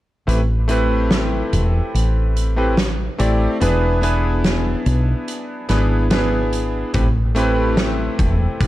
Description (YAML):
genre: vaporwave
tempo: 72 BPM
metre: 4/4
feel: straight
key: A minor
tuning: A4 = 442 Hz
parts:
  - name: bright electric grand piano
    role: accompaniment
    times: 0.3-8.7 s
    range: A3 to D5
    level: -20 LUFS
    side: equal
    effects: lush chorus, vintage 12-bit sampler grit, analog delay
  - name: woody fretless electric bass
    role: bass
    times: 0.3-8.7 s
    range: E1 to B1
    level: -18 LUFS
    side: equal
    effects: none
  - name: loose indie drum kit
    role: drums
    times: 0.3-8.7 s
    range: hi-hat, snare drum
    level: -23 LUFS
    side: right 1 dB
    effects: none
  - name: kick drum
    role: drums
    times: 6.9-8.7 s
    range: none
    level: -20 LUFS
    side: equal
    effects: none
room: small room ambience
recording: dark, warm production, cassette tape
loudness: -16 LUFS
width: side -15 dB against mid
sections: 0.3-8.7 A section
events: none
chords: 0.3 Am9; 3.6 E7; 6.9 Am9